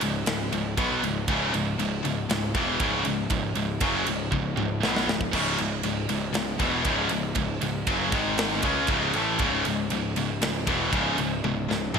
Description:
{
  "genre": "heavy metal",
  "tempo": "118 BPM",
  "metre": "4/4",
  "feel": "straight",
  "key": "C# minor",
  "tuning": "A4 = 441 Hz",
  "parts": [
    { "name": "high-gain distorted guitar", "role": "riff", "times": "0.0-12.0 s", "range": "C#2 to C#4", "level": "-28 LUFS", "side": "left 10 dB", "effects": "distortion" },
    { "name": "scooped high-gain guitar", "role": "riff", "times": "0.0-12.0 s", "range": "C#2 to C#4", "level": "-28 LUFS", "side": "right 10 dB", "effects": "distortion" },
    { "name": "fuzz picked electric bass", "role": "bass", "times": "0.0-12.0 s", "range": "C#1 to C#2", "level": "-32 LUFS", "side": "right 1 dB", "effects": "overdrive" },
    { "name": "tight metal drum kit", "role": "drums", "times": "0.0-12.0 s", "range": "crash cymbal, kick drum, ride cymbal, snare drum, toms", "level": "-30 LUFS", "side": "right 1 dB", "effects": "gated reverb" }
  ],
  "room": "moderate lush hall reverb, RT60 2.0 s",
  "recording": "bright 1980s-style digital production",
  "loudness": "-23 LUFS",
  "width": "side -6 dB against mid",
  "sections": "0.0-12.0 A section",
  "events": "half time 0.0-12.0; drum fill 4.3-5.3, 11.4-12.0",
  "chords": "0.0 C#m; 8.1 G#5; 8.6 C#m"
}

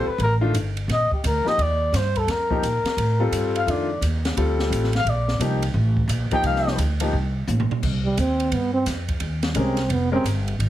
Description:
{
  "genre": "modal jazz",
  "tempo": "173 BPM",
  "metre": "4/4",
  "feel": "swing 63% on 8ths",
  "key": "F mixolydian",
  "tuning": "A4 = 440 Hz",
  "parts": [
    { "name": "breathy trumpet", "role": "melody", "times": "0.0-6.8 s", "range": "G4 to G5", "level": "-24 LUFS", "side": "left 1 dB", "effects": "none" },
    { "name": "warm concert grand piano", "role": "accompaniment", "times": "0.0-7.1, 9.6-10.2 s", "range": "Eb3 to Bb4", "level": "-25 LUFS", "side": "left 3 dB", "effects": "none" },
    { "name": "upright bass", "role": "bass", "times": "0.0-10.7 s", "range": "F1 to Bb2", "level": "-23 LUFS", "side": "equal", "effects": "none" },
    { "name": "open jazz drum kit", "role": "drums", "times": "0.2-10.7 s", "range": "crash cymbal, hi-hat, kick drum, ride cymbal, snare drum, toms", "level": "-29 LUFS", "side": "right 1 dB", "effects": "none" },
    { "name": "mellow trombone", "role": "second line", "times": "8.1-10.2 s", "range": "G3 to C4", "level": "-23 LUFS", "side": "right 3 dB", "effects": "none" }
  ],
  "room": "light reverb",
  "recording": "heavily compressed radio sound",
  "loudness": "-20 LUFS",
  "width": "side -13 dB against mid",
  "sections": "0.0-7.8 A section; 7.8-10.7 A section",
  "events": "trumpet solo 0.0-7.8; drum fill 7.5-7.8; trombone solo 7.8-10.7",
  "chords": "0.0 F13sus4; 7.8 Abmaj9"
}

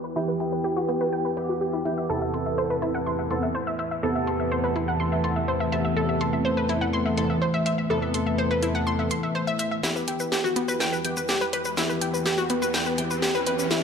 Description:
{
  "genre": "melodic techno",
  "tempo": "124 BPM",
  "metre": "4/4",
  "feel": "straight",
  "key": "E minor",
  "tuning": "A4 = 440 Hz",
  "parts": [
    { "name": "dark analog pad", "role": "sustained chords", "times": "0.0-13.8 s", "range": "E3 to G5", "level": "-32 LUFS", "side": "left 2 dB", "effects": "chorus" },
    { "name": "analog pluck", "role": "arpeggios", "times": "0.0-13.8 s", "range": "B3 to C6", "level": "-27 LUFS", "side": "left 1 dB", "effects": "chorus, ping-pong delay" },
    { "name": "bowed-like drone", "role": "drone", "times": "0.0-13.8 s", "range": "E2 to E3", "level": "-35 LUFS", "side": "equal", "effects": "built-in reverb" },
    { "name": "sync-sweep polysynth", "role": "stabs", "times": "0.2-13.8 s", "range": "E2 to A4", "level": "-28 LUFS", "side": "right 1 dB", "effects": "chorus, phaser, ping-pong delay" },
    { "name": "house drum kit", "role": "drums", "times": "0.4-13.8 s", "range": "congas, hi-hat, snare drum", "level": "-29 LUFS", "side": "equal", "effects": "high-pass filter on hats, high-pass filter on snare, high-pass filter on perc" },
    { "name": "tube shaker", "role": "percussion", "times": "9.8-13.8 s", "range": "none", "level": "-36 LUFS", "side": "left 2 dB", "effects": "none" },
    { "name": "riser", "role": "sound effects", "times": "10.8-13.8 s", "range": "none", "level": "-35 LUFS", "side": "equal", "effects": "none" }
  ],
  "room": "moderate lush hall reverb, RT60 1.9 s, digital ambience",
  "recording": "low-pass filter",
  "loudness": "-23 LUFS",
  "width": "side -6 dB against mid",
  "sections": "0.0-9.8 A section; 9.8-13.8 B section",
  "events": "filter sweep on synth arpeggio sound 0.0-9.8; filter sweep on analog synth pad 0.0-9.8; filter sweep 0.0-9.8; build-up 9.8-13.8; drum fill 9.8-13.8; riser 10.8-13.8",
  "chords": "0.0 Em; 2.1 Amadd9/E; 9.8 Em"
}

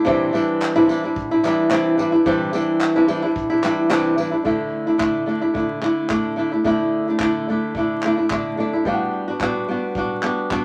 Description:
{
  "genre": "acoustic pop",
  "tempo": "109 BPM",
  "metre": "4/4",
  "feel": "swing 55% on 16ths",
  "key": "D mixolydian",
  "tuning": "A4 = 439 Hz",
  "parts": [
    { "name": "felt-muted upright piano", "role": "accompaniment", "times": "0.0-10.6 s", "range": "D4 to F#5", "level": "-33 LUFS", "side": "equal", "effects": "none" },
    { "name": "flamenco guitar", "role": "accompaniment", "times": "0.0-10.6 s", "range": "C3 to F#4", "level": "-20 LUFS", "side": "equal", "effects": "none" },
    { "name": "vintage brush drum kit", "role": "drums", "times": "0.1-10.6 s", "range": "handclaps, kick drum, tambourine", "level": "-32 LUFS", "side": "equal", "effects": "none" },
    { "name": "group handclap", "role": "percussion", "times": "0.6-4.0 s", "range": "none", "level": "-32 LUFS", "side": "equal", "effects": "none" }
  ],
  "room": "moderate studio ambience, RT60 0.5 s",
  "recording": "vinyl crackle",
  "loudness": "-20 LUFS",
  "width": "mono",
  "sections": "0.0-4.5 A section; 4.5-10.6 B section",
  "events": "none",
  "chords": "0.1 Cadd9; 4.5 Dsus2; 8.9 Gmaj7"
}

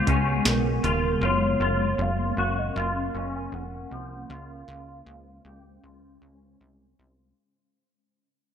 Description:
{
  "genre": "dream pop",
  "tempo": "78 BPM",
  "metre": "4/4",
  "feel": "straight",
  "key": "unclear",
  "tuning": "A4 = 437 Hz",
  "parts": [
    { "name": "granular cloud pad", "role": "sustained chords", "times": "0.0-7.4 s", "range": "Db3 to C5", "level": "-30 LUFS", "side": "left 1 dB", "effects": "built-in reverb, lush chorus, low-pass filter" },
    { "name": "clean electric guitar", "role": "arpeggios", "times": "0.0-7.4 s", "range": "F3 to G4", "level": "-29 LUFS", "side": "left 2 dB", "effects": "ensemble chorus, low-pass filter, digital delay" },
    { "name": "plucky analog bass", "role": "bass", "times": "0.0-7.3 s", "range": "Eb1 to Db2", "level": "-29 LUFS", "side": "equal", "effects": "none" },
    { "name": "soft vintage rhythm box", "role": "drums", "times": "0.1-1.0 s", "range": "hi-hat, kick drum, snare drum", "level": "-26 LUFS", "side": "equal", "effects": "none" },
    { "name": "hollow clarinet-like synth lead", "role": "melody", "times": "0.5-6.6 s", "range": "Bb4 to Ab5", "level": "-32 LUFS", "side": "right 1 dB", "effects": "chorus, low-pass filter, digital delay" }
  ],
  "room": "moderate plate reverb, RT60 2.9 s",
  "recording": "bright 1980s-style digital production",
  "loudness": "-22 LUFS",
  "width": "side -8 dB against mid",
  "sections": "0.0-7.4 A section",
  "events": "fade-out 0.0-7.4; filter sweep 0.0-7.4",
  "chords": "0.0 Db7; 1.2 Gbmaj7; 4.3 Dbmaj7"
}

